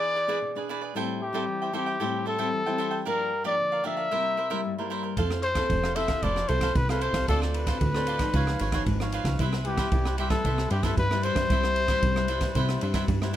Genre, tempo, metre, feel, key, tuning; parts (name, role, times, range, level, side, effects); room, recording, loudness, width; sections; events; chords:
samba and choro; 114 BPM; 4/4; straight; C major; A4 = 438 Hz
mellow trumpet; melody; 0.0-13.1 s; G4 to E5; -28 LUFS; left 2 dB
cavaquinho; accompaniment; 0.0-13.4 s; E4 to G5; -33 LUFS; right 5 dB
nylon-string guitar; accompaniment; 0.0-13.4 s; G2 to A4; -32 LUFS; left 2 dB
plucky analog bass; bass; 5.2-13.4 s; F1 to G2; -28 LUFS; right 1 dB
open jazz drum kit; drums; 5.2-13.4 s; kick drum, ride cymbal, rim click; -30 LUFS; right 1 dB
light reverb; close, detailed microphones; -24 LUFS; side -12 dB against mid
0.0-13.4 A section
0.0 E7; 1.0 Am7; 3.1 Gm7; 4.1 C7; 5.2 Fmaj7; 7.3 Dm7; 8.3 Db9; 9.4 Cmaj7